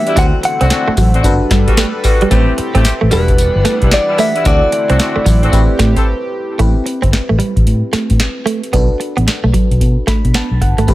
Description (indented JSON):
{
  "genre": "R&B, new jack swing",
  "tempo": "112 BPM",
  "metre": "4/4",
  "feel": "swing 63% on 16ths",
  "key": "A dorian",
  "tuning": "A4 = 439 Hz",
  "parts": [
    { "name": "direct-recorded clean electric guitar", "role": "melody", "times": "0.0-6.0 s", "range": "B4 to F#5", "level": "-17 LUFS", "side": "equal", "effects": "none" },
    { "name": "FM electric piano", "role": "accompaniment", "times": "0.0-10.9 s", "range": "C4 to B5", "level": "-22 LUFS", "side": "left 1 dB", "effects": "chorus, phaser" },
    { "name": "chorused pulse-width pad", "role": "sustained chords", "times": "0.0-6.6 s", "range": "D3 to F#5", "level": "-23 LUFS", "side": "equal", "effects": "none" },
    { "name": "direct-recorded clean electric guitar", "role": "riff", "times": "0.0-10.9 s", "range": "F#3 to D4", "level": "-19 LUFS", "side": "right 4 dB", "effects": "analog chorus" },
    { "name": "dark horn section", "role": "stabs", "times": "0.1-6.1 s", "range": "G3 to A4", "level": "-21 LUFS", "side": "left 2 dB", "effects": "tape echo" },
    { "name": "booming analog drum machine", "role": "drums", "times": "0.1-10.9 s", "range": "hi-hat, kick drum, snare drum, tambourine", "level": "-14 LUFS", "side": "equal", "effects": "none" },
    { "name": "vintage muted fingered electric bass", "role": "bass", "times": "0.2-10.9 s", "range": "E1 to B2", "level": "-14 LUFS", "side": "equal", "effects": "none" }
  ],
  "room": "little or no reverb",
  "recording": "none",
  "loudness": "-11 LUFS",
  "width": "side -16 dB against mid",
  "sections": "0.0-6.6 A section; 6.6-10.9 B section",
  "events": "break 6.1-6.6; FM electric piano fill 9.8-10.9",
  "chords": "0.2 D7; 1.2 Gmaj7; 2.3 Am7; 3.1 Em7; 4.5 D7; 5.5 Am7; 6.6 Am9; 8.7 Bm7"
}